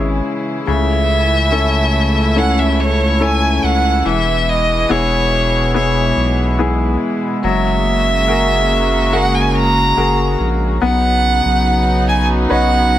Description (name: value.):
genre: pop ballad.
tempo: 71 BPM.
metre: 4/4.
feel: straight.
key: B major.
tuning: A4 = 439 Hz.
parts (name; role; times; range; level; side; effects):
bright grand piano; accompaniment; 0.0-13.0 s; C#3 to D#5; -20 LUFS; left 4 dB; none.
warm studio string section; sustained chords; 0.0-13.0 s; B2 to F#4; -20 LUFS; equal; none.
saturated sub bass; bass; 0.0-13.0 s; E1 to C#2; -18 LUFS; equal; none.
clear violin; melody; 0.7-13.0 s; C#5 to A#5; -17 LUFS; right 2 dB; none.
room: light reverb.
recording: none.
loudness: -13 LUFS.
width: side -12 dB against mid.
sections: 0.0-10.8 A section; 10.8-13.0 B section.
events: none.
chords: 0.0 C#m; 0.7 A/C#; 4.1 E; 7.4 F#add9; 10.8 Badd9.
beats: | 0.68 1.52 2.37 3.21 | 4.06 4.90 5.75 6.59 | 7.44 8.28 9.13 9.97 | 10.82 11.66 12.51.